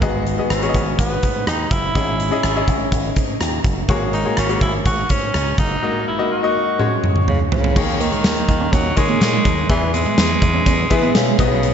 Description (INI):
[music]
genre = 1980s-style pop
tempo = 124 BPM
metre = 4/4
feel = straight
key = unclear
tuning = A4 = 441 Hz
[part]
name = bright grand piano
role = accompaniment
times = 0.0-11.7 s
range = G#2 to E5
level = -22 LUFS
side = left 4 dB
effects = slapback echo
[part]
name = slap bass with an envelope filter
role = bass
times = 0.0-11.7 s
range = F#1 to E3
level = -23 LUFS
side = right 1 dB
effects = none
[part]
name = huge arena drum kit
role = drums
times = 0.0-11.7 s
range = crash cymbal, hi-hat, kick drum, rim click, snare drum, toms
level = -19 LUFS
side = right 1 dB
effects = none
[part]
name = breathy tenor saxophone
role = melody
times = 0.5-11.7 s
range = C#3 to F#4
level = -22 LUFS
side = equal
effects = ping-pong delay
[part]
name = tambourine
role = percussion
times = 7.8-11.7 s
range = none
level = -38 LUFS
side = left 7 dB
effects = none
[part]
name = clean electric guitar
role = riff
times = 7.9-11.5 s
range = F#3 to C#4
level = -24 LUFS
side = right 8 dB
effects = wide subtle chorus
[sound]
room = moderate lush hall reverb, RT60 1.7 s, small room ambience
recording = big arena sound, nothing above 7.8 kHz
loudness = -15 LUFS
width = side -8 dB against mid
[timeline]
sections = 0.0-7.8 A section; 7.8-11.7 B section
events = drum fill 6.8-7.8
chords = 0.0 G#m7; 2.0 C#madd9/G#; 3.9 F#add9/G#; 5.8 D#m/G#; 6.8 F#sus2; 7.8 D#7sus4; 9.7 E